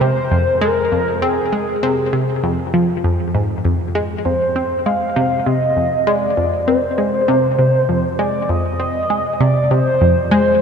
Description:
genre	ambient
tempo	99 BPM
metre	4/4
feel	straight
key	F dorian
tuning	A4 = 441 Hz
part	pulse-width lead	melody	0.0-10.6 s	Ab4 to F5	-18 LUFS	equal	chorus, cassette tape, ping-pong delay
part	analog pluck	riff	0.0-10.5 s	F2 to C4	-17 LUFS	equal	chorus, phaser, ping-pong delay
room	wet cathedral reverb, RT60 5.5 s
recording	in a vast, echoing space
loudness	-15 LUFS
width	side -6 dB against mid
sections	0.0-3.6 A section; 3.6-10.6 A section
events	none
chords	0.0 Fm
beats	0.01 0.61 | 1.22 1.83 2.43 3.04 | 3.65 4.25 4.86 5.46 | 6.07 6.68 7.28 7.89 | 8.49 9.10 9.71 10.31

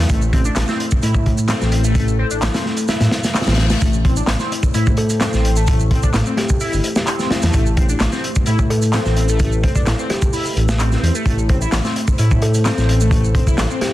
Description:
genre	breakbeat, breaks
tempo	129 BPM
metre	4/4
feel	straight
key	A minor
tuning	A4 = 440 Hz
part	dark analog pad	sustained chords	0.0-13.9 s	A3 to C5	-26 LUFS	left 1 dB	chorus, vintage 12-bit sampler grit, sidechain pumping
part	overdriven synth lead	riff	0.0-13.8 s	A3 to E4	-25 LUFS	left 1 dB	phaser, tube saturation, analog chorus, cassette tape, ping-pong delay
part	dark detuned saw bass	bass	0.0-13.7 s	G1 to A2	-17 LUFS	equal	none
part	crunchy breakbeat drum kit	drums	0.0-13.9 s	hi-hat, kick drum, snare drum	-18 LUFS	equal	none
part	electronic shaker and handclaps	drums	0.1-13.8 s	none	-27 LUFS	right 1 dB	none
part	reverse cymbal	sound effects	3.2-3.8 s	none	-31 LUFS	left 7 dB	none
part	kalimba	melody	5.0-13.9 s	E4 to A4	-26 LUFS	left 1 dB	telephone sound, vintage 12-bit sampler grit, ping-pong delay
room	light reverb, small room reverb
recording	dense, heavily limited modern master, vinyl crackle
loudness	-14 LUFS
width	side -15 dB against mid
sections	0.0-13.9 A section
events	reverse cymbal 3.2-3.8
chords	0.0 Am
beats	| 0.10 0.56 1.02 1.49 | 1.96 2.42 2.89 3.35 | 3.82 4.28 4.75 5.21 | 5.68 6.14 6.61 7.07 | 7.54 8.00 8.47 8.93 | 9.40 9.86 10.33 10.79 | 11.26 11.72 12.19 12.65 | 13.12 13.58

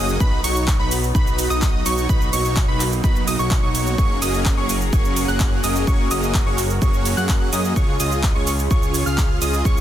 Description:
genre	EDM, festival progressive house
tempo	127 BPM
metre	4/4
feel	straight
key	F# major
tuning	A4 = 440 Hz
part	lush unison pad	sustained chords	0.0-9.8 s	C#3 to A#4	-28 LUFS	right 1 dB	chorus, phaser, sidechain pumping
part	plucky unison lead	arpeggios	0.0-9.8 s	B5 to F#6	-26 LUFS	right 1 dB	vintage 12-bit sampler grit, sidechain pumping, ping-pong delay
part	supersaw chords	riff	0.0-9.8 s	A#3 to F#5	-25 LUFS	equal	sidechain pumping, ping-pong delay
part	fat analog bass	bass	0.0-9.8 s	F#1 to F#2	-24 LUFS	equal	sidechain pumping
part	big-room dance drum kit	drums	0.1-9.8 s	handclaps, hi-hat, shaker	-26 LUFS	right 2 dB	none
part	electronic kick drum	drums	0.2-9.7 s	none	-19 LUFS	equal	none
room	little or no reverb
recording	dense, heavily limited modern master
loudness	-17 LUFS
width	side -11 dB against mid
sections	0.0-9.8 A section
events	none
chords	0.2 B; 4.0 F#add9; 7.8 C#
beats	| 0.20 0.68 1.15 1.62 | 2.09 2.57 3.04 3.51 | 3.98 4.46 4.93 5.40 | 5.87 6.35 6.82 7.29 | 7.76 8.23 8.71 9.18 | 9.65

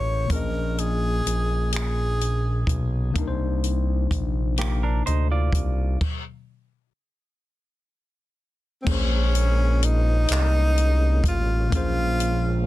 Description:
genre	slow six-eight R&B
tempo	42 BPM (dotted quarters)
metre	6/8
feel	straight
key	Bb minor from 8.9 s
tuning	A4 = 440 Hz
part	breathy tenor saxophone	melody	0.0-2.8, 8.8-12.6 s	C4 to Db5	-28 LUFS	equal	tape echo
part	semi-hollow electric guitar	second line	0.0-6.0 s	Bb3 to D5	-31 LUFS	right 5 dB	none
part	tine electric piano	accompaniment	0.0-12.7 s	Bb2 to Eb5	-31 LUFS	left 6 dB	none
part	smooth synth bass	bass	0.0-12.7 s	A1 to D2	-22 LUFS	equal	none
part	compact cocktail drum kit	drums	0.3-12.4 s	crash cymbal, finger snaps, handclaps, hi-hat, kick drum	-26 LUFS	equal	soft clipping on snare
part	tonewheel organ	sustained chords	8.9-12.7 s	Ab3 to Db4	-35 LUFS	right 1 dB	chorus vibrato, slow rotary speaker
room	little or no reverb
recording	dense, heavily limited modern master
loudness	-20 LUFS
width	side -16 dB against mid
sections	0.0-8.9 A section; 8.9-12.7 B section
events	stop 6.0-8.9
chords	0.0 Bbm7; 3.2 Cm9; 6.0 N.C.; 8.9 Bbm9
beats	| 0.30 1.72 | 3.15 4.58 | 6.01 7.44 | 8.87 10.30 | 11.72

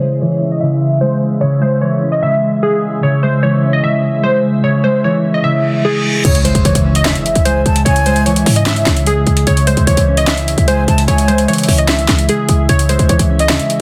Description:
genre	hip hop, trap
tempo	149 BPM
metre	4/4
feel	half-time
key	C# harmonic minor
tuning	A4 = 440 Hz
part	glassy digital keys	melody	0.0-13.8 s	G#4 to E5	-20 LUFS	equal	chorus, low-pass filter
part	concert harp	accompaniment	0.0-13.8 s	C#3 to C#4	-18 LUFS	equal	low-pass filter
part	glassy FM pad	sustained chords	0.0-13.8 s	C#3 to E5	-22 LUFS	equal	ensemble chorus, built-in reverb, low-pass filter
part	reverse cymbal and impact	sound effects	5.6-7.9 s	none	-24 LUFS	equal	none
part	short 808-style bass	bass	6.2-13.6 s	C#2 to G#2	-16 LUFS	equal	none
part	trap drum kit	drums	6.2-13.8 s	crash cymbal, finger snaps, hi-hat, snare drum	-20 LUFS	equal	none
part	breathy concert flute	second line	7.5-8.2, 10.7-11.5 s	G#5 to A5	-23 LUFS	equal	tape echo
room	light reverb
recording	dense, heavily limited modern master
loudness	-13 LUFS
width	mono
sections	0.0-6.2 A section; 6.2-13.8 B section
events	filter sweep 0.0-6.2; reverse cymbal 5.6-6.2; impact 6.2-7.9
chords	0.0 C#m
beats	0.21 0.61 1.01 | 1.42 1.82 2.22 2.62 | 3.03 3.43 3.83 4.23 | 4.64 5.04 5.44 5.84 | 6.25 6.65 7.05 7.46 | 7.86 8.26 8.66 9.07 | 9.47 9.87 10.27 10.68 | 11.08 11.48 11.88 12.29 | 12.69 13.09 13.50

